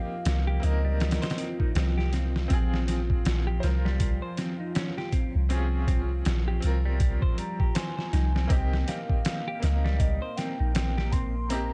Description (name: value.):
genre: trip hop.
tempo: 80 BPM.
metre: 4/4.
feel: swing 59% on 16ths.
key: C phrygian.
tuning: A4 = 440 Hz.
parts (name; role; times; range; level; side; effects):
pure breathy sine lead; melody; 0.0-2.1, 7.4-11.7 s; Eb5 to C6; -41 LUFS; equal; subtle chorus, tape echo.
bright upright piano; accompaniment; 0.0-11.7 s; Bb3 to C5; -40 LUFS; equal; tremolo, tape echo.
dark analog pad; sustained chords; 0.0-11.7 s; F3 to Bb4; -40 LUFS; equal; chorus.
soft 808-style bass; bass; 0.3-11.7 s; Bb1 to Db2; -28 LUFS; equal; none.
trip hop sampler-style drum kit; drums; 0.3-11.7 s; hi-hat, kick drum, snare drum; -31 LUFS; equal; none.
clean electric guitar; arpeggios; 0.5-11.7 s; G3 to C5; -40 LUFS; equal; tape echo.
room: little or no reverb.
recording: dark, warm production, nothing above 10.3 kHz.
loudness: -27 LUFS.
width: mono.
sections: 0.0-11.7 A section.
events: none.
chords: 0.0 Cm7; 2.5 Bbm7; 8.5 Cm7.